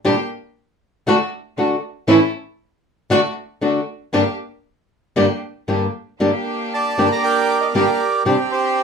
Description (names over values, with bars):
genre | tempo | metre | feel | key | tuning
tango | 117 BPM | 4/4 | rubato | G minor | A4 = 440 Hz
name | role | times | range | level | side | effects
flamenco guitar | accompaniment | 0.0-8.4 s | G2 to G4 | -16 LUFS | left 1 dB | none
rich chamber string section | stabs | 0.0-8.8 s | A3 to G4 | -24 LUFS | right 1 dB | none
bandoneon | melody | 6.7-8.8 s | G4 to Bb5 | -18 LUFS | right 4 dB | none
room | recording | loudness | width
moderate studio ambience, RT60 0.5 s | minimal, uncompressed stereo recording | -17 LUFS | side -6 dB against mid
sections
0.0-6.2 A section; 6.2-8.8 B section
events
none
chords
0.1 Gm/Bb; 1.1 D; 2.1 A; 3.1 D; 4.1 Gm; 8.3 Csus2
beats
| 0.05 0.56 1.07 1.58 | 2.08 2.60 3.11 3.62 | 4.13 4.64 5.16 5.68 | 6.21 6.72 7.24 7.75 | 8.26 8.77